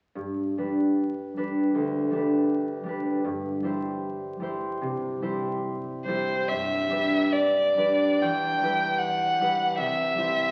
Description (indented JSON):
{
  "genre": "classical, romantic duo for violin and harp",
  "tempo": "64-82 BPM",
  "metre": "4/4",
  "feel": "rubato",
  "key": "G major",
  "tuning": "A4 = 438 Hz",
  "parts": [
    { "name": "concert harp", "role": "accompaniment", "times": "0.2-10.5 s", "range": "C2 to C5", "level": "-29 LUFS", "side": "equal", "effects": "none" },
    { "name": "rich violin", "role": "melody", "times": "6.1-10.5 s", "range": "C5 to G5", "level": "-26 LUFS", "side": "equal", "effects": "none" }
  ],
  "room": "wet recital hall reverb, RT60 1.8 s",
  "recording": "very old 78 rpm record, vinyl crackle",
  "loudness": "-26 LUFS",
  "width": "mono",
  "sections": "0.2-6.5 A section; 6.5-10.5 B section",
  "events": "none",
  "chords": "0.2 G; 3.2 C/G; 6.5 G; 8.2 Em; 9.8 C"
}